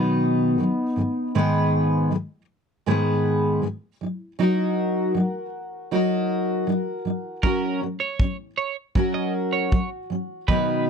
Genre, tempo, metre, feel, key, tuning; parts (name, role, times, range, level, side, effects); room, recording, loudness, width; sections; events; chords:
acoustic pop; 79 BPM; 4/4; straight; F# major; A4 = 440 Hz
fingerpicked steel-string acoustic guitar; accompaniment; 0.0-10.9 s; G#2 to B4; -21 LUFS; equal; double-tracked left and right
twelve-string electric guitar; arpeggios; 7.4-10.8 s; A#4 to D#5; -27 LUFS; right 8 dB; wide subtle chorus
kick drum; drums; 7.4-10.7 s; -22 LUFS; equal
light reverb; dry, close 1970s-style studio recording; -21 LUFS; side -6 dB against mid
0.0-10.9 A section
0.0 B; 1.0 G#m; 4.0 D#m/F#; 7.4 F#